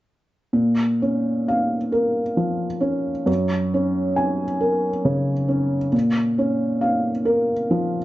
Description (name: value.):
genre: neoclassical minimalist piano.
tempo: 45 BPM (dotted quarters).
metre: 6/8.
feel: rubato.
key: Bb minor.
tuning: A4 = 440 Hz.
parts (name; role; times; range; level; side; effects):
felt-muted upright piano; solo; 0.5-8.0 s; Gb2 to Ab5; -19 LUFS; equal; none.
room: moderate studio reverb, RT60 0.7 s.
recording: nothing above 7.7 kHz.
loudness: -19 LUFS.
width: side -16 dB against mid.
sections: 0.5-8.0 A section.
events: none.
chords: 0.5 Bbm; 3.3 Gbadd9; 5.9 Bbm.